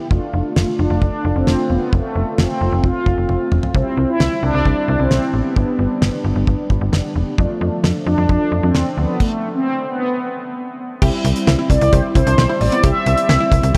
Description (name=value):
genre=synth-pop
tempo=132 BPM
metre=4/4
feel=straight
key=C major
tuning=A4 = 445 Hz
part: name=mellow synth brass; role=accompaniment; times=0.0-13.8 s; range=F3 to F4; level=-26 LUFS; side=equal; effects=chorus
part: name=slap-like FM bass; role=bass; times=0.1-13.8 s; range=E1 to F2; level=-20 LUFS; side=equal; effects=none
part: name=damped 70s drum kit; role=drums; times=0.1-13.8 s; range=crash cymbal, hi-hat, kick drum, snare drum, toms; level=-22 LUFS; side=equal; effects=none
part: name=mellow synth brass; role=melody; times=0.8-13.8 s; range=A3 to E5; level=-23 LUFS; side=equal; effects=chorus, diffuse ambient delay
part: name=unison pluck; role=arpeggios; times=11.0-13.8 s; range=B3 to G4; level=-27 LUFS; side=equal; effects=diffuse ambient delay
room=moderate cathedral reverb, RT60 5.5 s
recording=dreamy mix soaked in reverb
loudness=-17 LUFS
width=mono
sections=0.0-11.0 A section; 11.0-13.8 B section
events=drum fill 3.3-3.7; stop 9.2-11.0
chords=0.1 Dm/F; 1.9 F; 3.7 C; 5.6 G; 7.4 Dm/F; 9.2 N.C.; 11.0 C